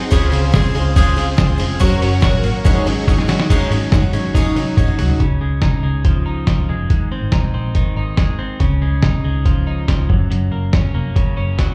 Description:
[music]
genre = jangly indie pop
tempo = 141 BPM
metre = 4/4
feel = straight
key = Db major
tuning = A4 = 440 Hz
[part]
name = picked twelve-string acoustic guitar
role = accompaniment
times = 0.0-5.2 s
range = Ab2 to Bb4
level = -24 LUFS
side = equal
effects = slapback echo
[part]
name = string machine, violas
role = sustained chords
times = 0.0-3.5 s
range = Ab4 to Db6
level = -30 LUFS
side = equal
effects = ensemble chorus
[part]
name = twelve-string electric guitar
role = arpeggios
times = 0.0-11.7 s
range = Gb2 to Ab4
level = -24 LUFS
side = equal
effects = none
[part]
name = vintage muted picked electric bass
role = bass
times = 0.1-11.7 s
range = F1 to Db2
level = -21 LUFS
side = equal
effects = none
[part]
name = lo-fi sampler-style drum kit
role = drums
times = 0.1-11.7 s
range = crash cymbal, hi-hat, kick drum, ride cymbal, snare drum, toms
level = -19 LUFS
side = equal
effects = none
[sound]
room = light reverb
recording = live gig heard through the venue's PA, club reverb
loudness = -16 LUFS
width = mono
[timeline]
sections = 0.0-3.5 A section; 3.5-5.2 B section; 5.2-11.7 C section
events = drum fill 3.1-3.5, 4.3-5.2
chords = 0.1 Dbmaj7; 1.8 Gb; 2.7 Ab7sus4; 5.2 Dbadd9; 6.9 Ab; 8.6 Dbadd9; 10.1 Gb

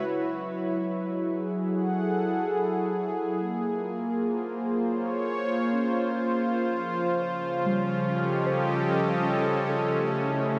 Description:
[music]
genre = ambient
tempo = 73 BPM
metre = 4/4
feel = straight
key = unclear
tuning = A4 = 440 Hz
[part]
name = warm analog pad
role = sustained chords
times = 0.0-10.6 s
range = F3 to Gb5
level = -28 LUFS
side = equal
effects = chorus
[part]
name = muted felt-like synth keys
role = arpeggios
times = 0.0-10.1 s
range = G3 to Db6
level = -38 LUFS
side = equal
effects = chorus, tape echo
[part]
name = bowed-like drone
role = drone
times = 0.0-0.2, 7.3-10.6 s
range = Db3 to Db4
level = -34 LUFS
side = equal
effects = built-in reverb
[sound]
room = wet huge ambient reverb, RT60 7.9 s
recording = none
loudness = -27 LUFS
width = mono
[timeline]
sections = 0.1-10.6 A section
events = fade-in on synth keys 0.1-10.6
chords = 0.1 Gbm7; 3.4 Bbm9; 6.7 F9; 9.9 A

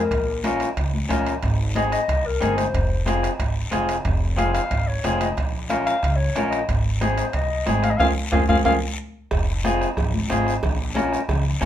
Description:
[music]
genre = latin, cumbia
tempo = 183 BPM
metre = 4/4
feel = straight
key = F minor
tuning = A4 = 440 Hz
[part]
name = dark clarinet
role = second line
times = 0.0-8.7 s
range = Bb4 to F5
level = -25 LUFS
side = left 3 dB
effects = none
[part]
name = upright bass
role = bass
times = 0.0-11.7 s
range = F1 to F2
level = -25 LUFS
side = equal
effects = none
[part]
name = bombo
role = percussion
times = 0.1-11.7 s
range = none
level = -26 LUFS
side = right 1 dB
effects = none
[part]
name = congas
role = percussion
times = 0.1-11.7 s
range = none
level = -29 LUFS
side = left 2 dB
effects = none
[part]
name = guiro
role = percussion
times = 0.1-11.7 s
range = none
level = -38 LUFS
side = left 5 dB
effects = none
[part]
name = timbales and cowbell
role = percussion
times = 0.1-11.7 s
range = none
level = -32 LUFS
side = right 6 dB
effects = none
[part]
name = electric guitar through a small old amp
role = accompaniment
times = 0.4-11.7 s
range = C4 to Bb4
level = -24 LUFS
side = left 2 dB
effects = none
[sound]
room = moderate studio reverb, RT60 0.7 s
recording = minimal, uncompressed stereo recording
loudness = -19 LUFS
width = side -11 dB against mid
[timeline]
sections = 0.0-9.3 A section; 9.3-11.7 B section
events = clarinet solo 0.0-9.3; band accent 8.0-9.3; drum fill 8.5-9.3; clean electric guitar fill 8.8-9.3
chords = 0.1 Bbm; 1.4 Ab; 2.7 Fm; 5.4 Bbm; 6.7 Ab; 8.0 Fm; 10.6 Bbm

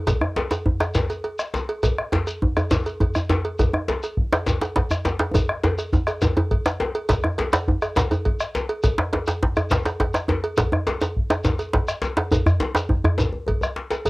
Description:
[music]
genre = west african traditional, West African drum ensemble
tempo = 137 BPM (dotted quarters)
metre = 12/8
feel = straight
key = none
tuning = none
[part]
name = bombo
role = percussion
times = 0.1-14.1 s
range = none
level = -24 LUFS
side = equal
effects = none
[part]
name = cowbell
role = percussion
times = 0.1-14.1 s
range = none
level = -28 LUFS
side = right 2 dB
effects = none
[part]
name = djembe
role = percussion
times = 0.1-14.1 s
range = none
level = -26 LUFS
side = left 2 dB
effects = none
[part]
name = djembe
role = percussion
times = 0.1-13.3 s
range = none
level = -22 LUFS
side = equal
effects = none
[part]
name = shekere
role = percussion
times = 0.1-14.1 s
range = none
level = -29 LUFS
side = equal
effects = none
[sound]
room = light reverb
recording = home recording on cassette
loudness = -20 LUFS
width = side -22 dB against mid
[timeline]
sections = 0.0-7.1 A section; 7.1-14.1 B section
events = drum fill 5.3-7.1, 13.3-14.1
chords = none

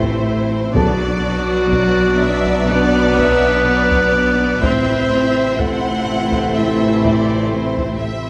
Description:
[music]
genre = cinematic, suspense film score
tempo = 62 BPM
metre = 4/4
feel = straight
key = B phrygian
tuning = A4 = 440 Hz
[part]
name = rich studio violin section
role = melody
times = 0.0-8.3 s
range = C5 to D5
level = -29 LUFS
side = equal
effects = none
[part]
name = rich studio violin section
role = second line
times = 0.0-8.3 s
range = C5 to F#5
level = -28 LUFS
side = equal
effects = none
[part]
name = warm clarinet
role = second line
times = 0.0-8.2 s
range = F#4 to C5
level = -22 LUFS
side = equal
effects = none
[part]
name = rich studio viola section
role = accompaniment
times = 0.0-8.3 s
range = B3 to E4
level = -27 LUFS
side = equal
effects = none
[part]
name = dark French horn section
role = sustained chords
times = 0.0-8.3 s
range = A3 to E4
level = -27 LUFS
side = equal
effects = none
[part]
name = warm trombone section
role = sustained chords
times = 0.0-8.3 s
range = B2 to F#3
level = -28 LUFS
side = equal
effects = none
[part]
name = warm studio cello section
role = riff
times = 0.0-8.3 s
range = A2 to B2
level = -30 LUFS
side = equal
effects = none
[part]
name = rich studio cello section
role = bass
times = 0.0-8.3 s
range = F#3 to C4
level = -23 LUFS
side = equal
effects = none
[part]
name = rich studio double bass section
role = bass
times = 0.0-8.3 s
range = A1 to B1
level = -26 LUFS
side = equal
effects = none
[part]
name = taiko ensemble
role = drums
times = 0.0-8.3 s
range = none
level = -28 LUFS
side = equal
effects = none
[part]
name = felt-muted upright piano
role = texture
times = 0.0-4.6 s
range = A4 to A5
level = -28 LUFS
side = equal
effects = none
[part]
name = timpani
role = percussion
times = 0.7-2.2 s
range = B2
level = -27 LUFS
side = equal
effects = none
[sound]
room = moderate scoring stage reverb, RT60 2.0 s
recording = none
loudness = -16 LUFS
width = mono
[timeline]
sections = 0.0-8.3 A section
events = none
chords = 0.0 Am; 0.8 Bm; 4.6 Am

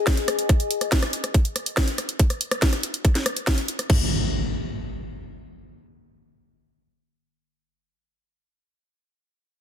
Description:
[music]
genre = psychedelic trance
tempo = 141 BPM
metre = 4/4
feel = straight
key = unclear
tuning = A4 = 440 Hz
[part]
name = warbly tape-like pad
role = texture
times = 0.0-0.5 s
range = G#4 to G#5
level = -28 LUFS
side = left 6 dB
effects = chorus, built-in reverb, phaser, sidechain pumping
[part]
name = electronic kick drum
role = drums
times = 0.1-4.0 s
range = none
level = -20 LUFS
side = equal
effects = none
[part]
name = garage drum kit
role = drums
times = 0.1-4.0 s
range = crash cymbal, hi-hat, rim click, snare drum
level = -25 LUFS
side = equal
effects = none
[part]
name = impact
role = sound effects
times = 3.9-7.6 s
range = none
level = -27 LUFS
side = equal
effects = none
[sound]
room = light reverb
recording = dense, heavily limited modern master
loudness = -21 LUFS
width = side -9 dB against mid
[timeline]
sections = 0.0-3.9 A section; 3.9-7.3 B section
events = none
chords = 0.0 G#5; 3.9 N.C.

